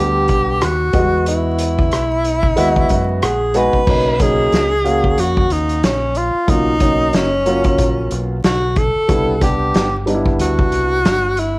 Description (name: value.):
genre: hip hop, jazz-hop.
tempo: 92 BPM.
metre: 4/4.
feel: swing 58% on 16ths.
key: unclear.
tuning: A4 = 439 Hz.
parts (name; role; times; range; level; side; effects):
breathy tenor saxophone; melody; 0.0-11.6 s; C#4 to B4; -17 LUFS; equal; none.
dark concert grand piano; accompaniment; 0.0-11.0 s; F#3 to G#5; -19 LUFS; equal; cassette tape.
deep dub fingered electric bass; bass; 0.0-11.6 s; F#1 to F#2; -21 LUFS; equal; none.
vintage drum kit; drums; 0.3-11.5 s; crash cymbal, hi-hat, kick drum, rim click, snare drum; -18 LUFS; equal; cassette tape.
room: light reverb, studio ambience.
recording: home recording on cassette, vinyl crackle.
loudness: -13 LUFS.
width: side -22 dB against mid.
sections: 0.0-3.9 A section; 3.9-11.6 B section.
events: grand piano fill 2.6-3.9.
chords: 0.0 Cmaj7sus2 (rootless); 0.9 Emaj9; 3.9 Bmaj9; 9.1 Cmaj9.